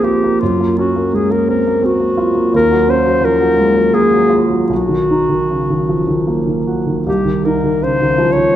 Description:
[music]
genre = classical, impressionist duo for clarinet and grand piano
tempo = 75-87 BPM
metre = 3/4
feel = rubato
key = unclear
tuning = A4 = 435 Hz
[part]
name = clear clarinet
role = melody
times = 0.0-8.6 s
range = F4 to Db5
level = -15 LUFS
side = left 2 dB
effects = none
[part]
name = clear grand piano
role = accompaniment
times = 0.0-8.6 s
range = Bb1 to F#4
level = -15 LUFS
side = right 2 dB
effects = none
[sound]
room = moderate scoring stage reverb, RT60 1.7 s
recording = none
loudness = -12 LUFS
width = side -11 dB against mid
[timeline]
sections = 0.0-8.6 A section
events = none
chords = 0.4 Gbmaj7#11; 2.5 Ebm9; 4.7 Bmaj7; 7.1 Cm7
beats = | 0.41 1.13 1.83 | 2.54 3.23 3.95 | 4.71 5.50 6.28 | 7.07 7.82 8.55

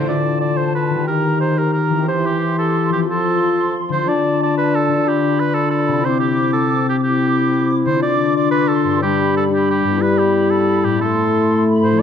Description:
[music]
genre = cinematic, heroic adventure film score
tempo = 121 BPM (dotted quarters)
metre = 12/8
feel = straight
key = D dorian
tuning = A4 = 440 Hz
[part]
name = warm oboe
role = second line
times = 0.0-12.0 s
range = G4 to D5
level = -21 LUFS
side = right 3 dB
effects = none
[part]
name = concert harp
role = arpeggios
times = 0.0-12.0 s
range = G2 to C5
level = -23 LUFS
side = left 9 dB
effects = none
[part]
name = dark clarinet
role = second line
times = 0.1-12.0 s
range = D4 to G4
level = -23 LUFS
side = equal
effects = none
[part]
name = hollow flute section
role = second line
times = 0.1-12.0 s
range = A5 to D6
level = -25 LUFS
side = right 2 dB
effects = none
[part]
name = mellow French horn section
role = sustained chords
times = 0.1-12.0 s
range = D3 to D4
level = -18 LUFS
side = left 2 dB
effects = none
[sound]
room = moderate recital hall reverb, RT60 1.4 s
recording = none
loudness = -14 LUFS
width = side -8 dB against mid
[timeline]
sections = 0.1-12.0 A section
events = none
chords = 0.1 Dm; 1.1 Eb; 2.1 C/E; 3.1 F; 4.1 Dm; 5.1 G7/D; 6.1 Cadd9; 8.0 Dm; 9.0 G; 10.0 Em/G; 11.0 Am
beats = | 0.08 0.58 1.08 1.58 | 2.08 2.58 3.08 3.58 | 4.08 4.57 5.07 5.56 | 6.06 6.56 7.05 7.55 | 8.04 8.54 9.03 9.52 | 10.02 10.52 11.01 11.51 | 12.00

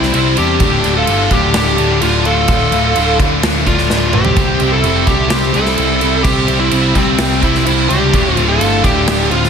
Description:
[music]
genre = hard rock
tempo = 128 BPM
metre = 4/4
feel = straight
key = D minor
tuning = A4 = 440 Hz
[part]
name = high-gain lead guitar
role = melody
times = 0.0-9.5 s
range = C4 to A4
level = -17 LUFS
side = left 1 dB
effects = distortion, slapback echo, analog delay
[part]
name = octave-fuzz lead guitar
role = second line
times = 0.0-9.5 s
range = G3 to F4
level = -21 LUFS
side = right 3 dB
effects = distortion, slapback echo
[part]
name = cranked stack guitar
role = riff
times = 0.0-9.5 s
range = D2 to C4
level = -20 LUFS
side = left 10 dB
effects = overdrive, spring reverb, slapback echo
[part]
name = heavy high-gain guitar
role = riff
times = 0.0-9.5 s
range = D2 to C4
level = -20 LUFS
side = right 1 dB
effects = distortion
[part]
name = picked electric bass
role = bass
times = 0.0-9.5 s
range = D1 to E2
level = -18 LUFS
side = right 1 dB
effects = none
[part]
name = big rock drum kit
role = drums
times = 0.0-9.5 s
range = crash cymbal, kick drum, snare drum, toms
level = -17 LUFS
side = right 1 dB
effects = none
[part]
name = sludgy distorted guitar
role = riff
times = 4.4-9.5 s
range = D2 to C4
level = -21 LUFS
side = right 11 dB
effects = overdrive, slapback echo
[sound]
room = moderate concert hall reverb, RT60 2.0 s, studio reverb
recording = big arena sound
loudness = -10 LUFS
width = side -7 dB against mid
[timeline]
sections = 0.0-9.5 A section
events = drum fill 3.9-4.4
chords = 0.0 C; 0.6 Dm; 4.4 C; 8.1 D5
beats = 0.14 | 0.61 1.08 1.55 2.02 | 2.49 2.96 3.43 3.90 | 4.37 4.84 5.31 5.78 | 6.25 6.72 7.19 7.66 | 8.13 8.60 9.07

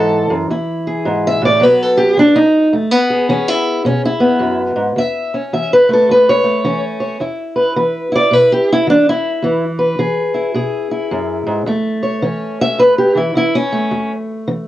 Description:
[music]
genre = acoustic country blues, solo or duo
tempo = 107 BPM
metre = 4/4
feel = swing 63% on 8ths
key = E mixolydian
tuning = A4 = 440 Hz
[part]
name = fingerpicked steel-string acoustic guitar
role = solo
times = 0.0-14.7 s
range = E2 to E5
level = -12 LUFS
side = equal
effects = cassette tape
[sound]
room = moderate studio reverb, RT60 0.7 s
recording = home recording on cassette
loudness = -12 LUFS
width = side -14 dB against mid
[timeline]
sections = 0.0-2.7 A section; 2.7-14.7 A section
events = steel-string acoustic guitar solo 0.0-2.7, 2.7-14.7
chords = 0.0 A5; 0.5 E; 1.6 B5; 2.7 E; 5.0 A; 7.2 E; 11.7 A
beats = | 0.51 1.07 1.62 2.18 | 2.73 3.29 3.85 4.41 | 4.96 5.52 6.08 6.64 | 7.20 7.76 8.32 8.88 | 9.44 10.00 10.56 11.12 | 11.68 12.24 12.80 13.36 | 13.92 14.48

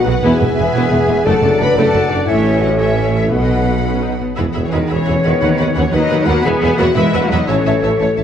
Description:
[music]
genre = cinematic, heroic adventure film score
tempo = 116 BPM (dotted quarters)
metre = 6/8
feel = straight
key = unclear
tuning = A4 = 440 Hz
[part]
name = clear symphonic violin section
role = melody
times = 0.0-8.0 s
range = B4 to B5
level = -28 LUFS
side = left 4 dB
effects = none
[part]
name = clear clarinet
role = second line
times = 0.0-4.2 s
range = B4 to D5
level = -26 LUFS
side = left 1 dB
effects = none
[part]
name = rich symphonic violin section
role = second line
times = 0.0-8.2 s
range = B4 to B5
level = -26 LUFS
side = left 3 dB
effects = none
[part]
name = warm symphonic viola section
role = accompaniment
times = 0.0-8.1 s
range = F#3 to F#5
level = -22 LUFS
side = left 1 dB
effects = none
[part]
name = mellow French horn section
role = sustained chords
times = 0.0-8.0 s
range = B3 to B4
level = -19 LUFS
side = left 3 dB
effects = none
[part]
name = warm trombone section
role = sustained chords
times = 0.0-7.9 s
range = D#3 to D4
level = -25 LUFS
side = right 3 dB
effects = none
[part]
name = concert harp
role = arpeggios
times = 0.0-8.2 s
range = E2 to B5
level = -22 LUFS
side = left 5 dB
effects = none
[part]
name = clear chamber double bass section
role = bass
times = 0.1-8.2 s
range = E1 to E2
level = -20 LUFS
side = right 3 dB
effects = none
[part]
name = mellow tuba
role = bass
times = 0.1-8.2 s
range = E1 to D#2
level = -21 LUFS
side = right 3 dB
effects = none
[part]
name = rich studio cello section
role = bass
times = 0.1-8.0 s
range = E2 to B3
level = -21 LUFS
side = right 2 dB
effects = none
[part]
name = flute section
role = second line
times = 0.2-8.2 s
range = B4 to F#5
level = -23 LUFS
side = left 3 dB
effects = none
[sound]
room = wet scoring stage reverb, RT60 1.7 s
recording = worn, warbling old tape, cassette tape, warbly pitch drift, nothing above 10.6 kHz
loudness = -12 LUFS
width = side -9 dB against mid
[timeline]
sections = 0.0-4.4 A section; 4.4-8.2 B section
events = none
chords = 0.2 E; 1.3 D/F#; 2.3 A; 3.3 B; 4.4 Eadd9; 5.4 B/D#; 6.4 Eadd9; 7.5 A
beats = | 0.24 0.74 | 1.26 1.76 | 2.28 2.80 | 3.33 3.86 | 4.38 4.90 | 5.42 5.93 | 6.45 6.96 | 7.48 8.00

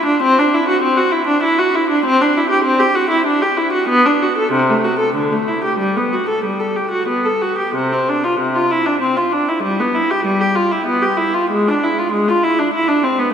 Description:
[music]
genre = classical, baroque-style suite movement for unaccompanied viola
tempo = 88-100 BPM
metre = 3/4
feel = rubato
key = G major, C major from 7.8 s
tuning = A4 = 440 Hz
[part]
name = clear viola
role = solo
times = 0.0-13.3 s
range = C3 to A4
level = -14 LUFS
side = equal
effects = none
[sound]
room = wet cathedral reverb, RT60 5.2 s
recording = recorded in a church or concert hall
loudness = -14 LUFS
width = side -8 dB against mid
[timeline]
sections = 0.0-7.8 A section; 7.8-13.3 A section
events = none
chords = none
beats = | 0.22 0.83 1.44 | 2.05 2.66 3.27 | 3.90 4.53 5.15 | 5.79 6.44 7.08 | 7.76 8.39 9.01 | 9.63 10.24 10.86 | 11.50 12.12 12.73 | 13.33

